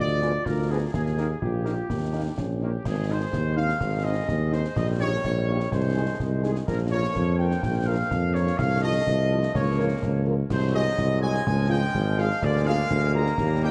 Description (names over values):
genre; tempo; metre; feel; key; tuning
military-style march for wind band; 125 BPM; 2/4; straight; Ab major; A4 = 440 Hz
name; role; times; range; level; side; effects
dark trumpet section; melody; 0.0-13.7 s; G4 to Bb5; -31 LUFS; equal; analog delay
warm euphonium; second line; 0.0-2.8 s; Db4 to F4; -36 LUFS; equal; analog delay
mellow tuba; bass; 0.0-13.7 s; Ab1 to F2; -27 LUFS; equal; none
mellow French horn section; accompaniment; 0.2-13.7 s; F3 to Bb4; -36 LUFS; equal; none
warm trombone section; sustained chords; 0.2-13.7 s; Eb3 to B3; -38 LUFS; equal; none
concert snare drum, concert bass drum and clash cymbals; drums; 0.2-13.7 s; none; -35 LUFS; equal; vintage 12-bit sampler grit, analog delay
room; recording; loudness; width
light reverb, studio reverb; echo-heavy mix; -25 LUFS; mono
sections
0.0-2.9 A section; 2.9-13.7 B section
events
none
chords
0.0 Ddim7; 0.9 Eb; 2.9 Ab; 4.8 Eb7/Bb; 5.7 Ab/C; 6.7 Bbm; 8.6 F7/C; 9.6 Bbm/Db; 10.5 Ab7/C; 11.5 Db; 12.4 Bb7/D